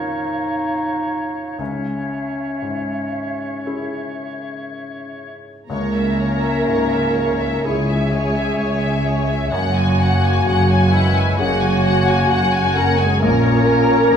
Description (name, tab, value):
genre	cinematic, emotional film score for orchestra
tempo	57-67 BPM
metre	4/4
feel	rubato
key	C# dorian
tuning	A4 = 441 Hz
part	mellow hollow silver concert flute	second line	0.0-14.2 s	E5 to A#5	-27 LUFS	left 2 dB	none
part	warm clarinet	second line	0.0-14.2 s	G#3 to D#4	-25 LUFS	left 1 dB	none
part	warm oboe	second line	0.0-14.2 s	C#5	-28 LUFS	left 3 dB	none
part	felt-muted upright piano	accompaniment	0.0-14.2 s	A#1 to A#4	-28 LUFS	left 2 dB	none
part	muted symphonic violin section	melody	5.7-14.2 s	A#4 to G#5	-25 LUFS	left 3 dB	none
part	muted studio violin section	second line	5.7-14.2 s	E5 to A#5	-28 LUFS	equal	none
part	muted symphonic viola section	accompaniment	5.7-14.2 s	E4 to A#4	-23 LUFS	right 3 dB	none
part	mellow French horn section	sustained chords	5.7-14.2 s	E3 to A#3	-24 LUFS	left 3 dB	none
part	muted symphonic cello section	bass	5.7-14.2 s	C#2 to A#2	-22 LUFS	right 2 dB	none
part	muted symphonic double bass section	bass	5.7-14.2 s	F#1 to C#2	-22 LUFS	right 1 dB	none
room	wet recital hall reverb, RT60 1.3 s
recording	recorded in a church or concert hall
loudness	-16 LUFS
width	side -8 dB against mid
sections	0.0-5.7 A section; 5.7-14.2 A section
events	none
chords	0.0 A#m; 1.6 C#m; 9.5 F#add9; 13.2 A#m